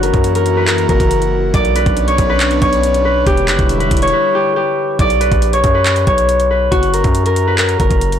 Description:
hip hop, trap; 139 BPM; 4/4; half-time; B harmonic minor; A4 = 440 Hz
concert harp; melody; 0.0-8.2 s; F#4 to D5; -14 LUFS; left 1 dB; tape echo
airy breathy pad; sustained chords; 0.0-5.0 s; D3 to F#4; -21 LUFS; equal; chorus
hard-hitting 808-style bass; bass; 0.0-8.2 s; E1 to F#2; -17 LUFS; equal
trap drum kit; drums; 0.0-8.2 s; handclaps, hi-hat, kick drum; -17 LUFS; equal
digital ambience; blown-out, overdriven recording, overdrive; -11 LUFS; side -9 dB against mid
0.0-5.0 A section; 5.0-8.2 A section
drums muted 4.1-5.0
0.0 F#7; 1.5 Bmadd9; 3.3 Em7; 5.0 Bsus2; 6.7 F#

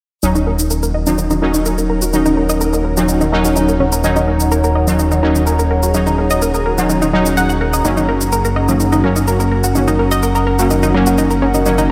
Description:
melodic techno; 126 BPM; 4/4; straight; Eb minor; A4 = 440 Hz
dark analog pad; sustained chords; 1.4-11.9 s; Db4 to Bb5; -23 LUFS; equal; chorus
analog pluck; arpeggios; 0.2-11.8 s; Db4 to Gb5; -21 LUFS; equal; chorus, cassette tape, analog delay
synth brass stab; stabs; 0.2-11.9 s; Gb3 to Eb4; -20 LUFS; equal; chorus, analog delay
fat analog bass; bass; 0.2-11.9 s; Eb1 to Gb1; -20 LUFS; equal
shaker; drums; 0.2-11.9 s; -27 LUFS; equal
ethereal airy pad; texture; 0.9-11.9 s; Db4 to Bb4; -27 LUFS; equal; ensemble chorus, built-in reverb
riser; sound effects; 11.7-11.9 s; barely audible
moderate plate reverb, RT60 2.6 s; dreamy mix soaked in reverb; -15 LUFS; mono
0.2-11.9 A section
filter sweep on synth arpeggio sound 0.2-11.9
0.2 Ebm7; 7.8 Gb

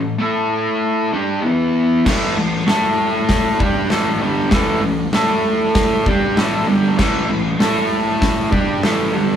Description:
garage rock duo or trio; 97 BPM; 4/4; straight; A4 = 443 Hz
fuzz guitar; riff; 0.0-9.4 s; G2 to A4; -16 LUFS; equal; distortion
oversized low-tuned drum kit; drums; 2.1-9.0 s; crash cymbal, hi-hat, kick drum, snare drum; -19 LUFS; equal
moderate stone room reverb, RT60 1.1 s; band playing live in one room; -15 LUFS; side -9 dB against mid
0.0-2.1 A section; 2.1-9.4 A section
break 0.0-2.1
0.0 A5; 1.4 E5; 2.1 A5

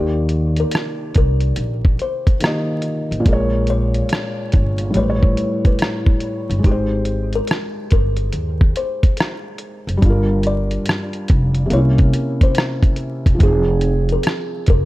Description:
lo-fi hip hop; 71 BPM; 4/4; swing 65% on 16ths; Eb major; A4 = 440 Hz
kalimba; melody; 0.0-14.9 s; G4 to D5; -26 LUFS; left 1 dB; analog delay
felt-muted upright piano; accompaniment; 0.0-14.9 s; A2 to Eb5; -22 LUFS; equal; cassette tape
upright bass; bass; 0.0-14.9 s; E1 to Eb2; -19 LUFS; equal
dusty soul sampler-style drum kit; drums; 0.3-14.9 s; hi-hat, kick drum, rim click; -16 LUFS; equal
studio reverb; dry, gritty hardware recording, vinyl crackle; -15 LUFS; side -17 dB against mid
0.0-14.9 A section
0.0 Ebmaj7; 3.3 Bbm7; 5.0 A9; 6.6 Abmaj7; 10.0 Gm7; 11.7 C7b9; 13.4 Fm7

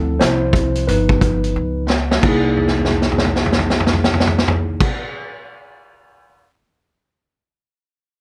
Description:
hip hop, jazz-hop; 89 BPM; 4/4; swing 63% on 16ths; A4 = 440 Hz
mellow tine electric piano; accompaniment; 0.0-4.9 s; F3 to C5; -22 LUFS; equal
upright bass; bass; 0.0-4.9 s; G1 to D2; -25 LUFS; equal
vintage drum kit; drums; 0.2-6.4 s; crash cymbal, hi-hat, kick drum, snare drum, toms; -19 LUFS; equal
light reverb; -17 LUFS; mono
0.0-2.2 A section; 2.2-4.9 B section
tine electric piano solo 0.0-2.2; drum fill 1.6-2.2, 2.6-4.8
0.0 Dm9; 0.9 Gaug7; 2.2 C7alt

